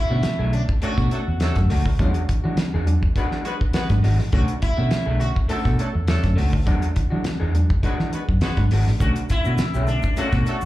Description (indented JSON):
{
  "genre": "funk",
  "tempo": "103 BPM",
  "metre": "4/4",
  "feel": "straight",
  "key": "B dorian",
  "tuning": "A4 = 440 Hz",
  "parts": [
    { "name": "sitar", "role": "melody", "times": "0.0-10.7 s", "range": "D4 to A4", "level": "-29 LUFS", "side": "equal", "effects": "tape echo" },
    { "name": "barky reed electric piano", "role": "stabs", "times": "0.0-10.6 s", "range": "B2 to D4", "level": "-31 LUFS", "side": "right 2 dB", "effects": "overdrive, fast tremolo, slapback echo, tape echo" },
    { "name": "electric guitar through a small old amp", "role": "accompaniment", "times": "0.1-10.6 s", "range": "G#3 to G#4", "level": "-30 LUFS", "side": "left 2 dB", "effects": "slapback echo" },
    { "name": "vintage muted fingered electric bass", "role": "bass", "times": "0.1-10.7 s", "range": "G#1 to E3", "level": "-21 LUFS", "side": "equal", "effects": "none" },
    { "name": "damped 70s drum kit", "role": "drums", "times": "0.2-10.6 s", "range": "hi-hat, kick drum, snare drum", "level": "-23 LUFS", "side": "equal", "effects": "none" },
    { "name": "warm horn section", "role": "second line", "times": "0.8-10.6 s", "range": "F#3 to B4", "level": "-32 LUFS", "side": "equal", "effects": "slapback echo" },
    { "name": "tube shaker", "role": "percussion", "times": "9.0-10.7 s", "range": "none", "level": "-48 LUFS", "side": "left 6 dB", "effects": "none" }
  ],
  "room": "light reverb, studio reverb",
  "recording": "live gig heard through the venue's PA, club reverb",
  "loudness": "-18 LUFS",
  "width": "side -16 dB against mid",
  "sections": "0.0-10.7 A section",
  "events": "none",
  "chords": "0.0 Bm7; 2.0 E9; 4.3 Bm7; 6.7 E9; 9.0 Bm7"
}